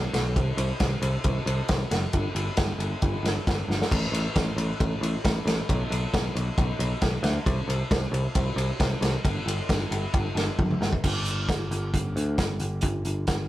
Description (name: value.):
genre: indie rock.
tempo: 135 BPM.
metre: 4/4.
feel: straight.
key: unclear.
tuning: A4 = 440 Hz.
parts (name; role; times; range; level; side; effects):
picked electric bass; bass; 0.0-13.5 s; F#1 to D2; -27 LUFS; equal; none.
vintage drum kit; drums; 0.1-13.4 s; crash cymbal, hi-hat, kick drum, ride cymbal, snare drum, toms; -26 LUFS; equal; none.
room: moderate studio reverb, RT60 0.6 s.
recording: rough rehearsal-room recording, tube saturation.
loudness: -24 LUFS.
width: side -15 dB against mid.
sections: 0.0-11.0 A section; 11.0-13.5 B section.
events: drum fill 3.7, 10.6-11.0.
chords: none.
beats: | 0.36 0.80 1.25 1.69 | 2.14 2.58 3.02 3.47 | 3.91 4.36 4.80 5.25 | 5.69 6.13 6.58 7.02 | 7.47 7.91 8.36 8.80 | 9.24 9.69 10.14 10.58 | 11.03 11.48 11.92 12.37 | 12.82 13.27.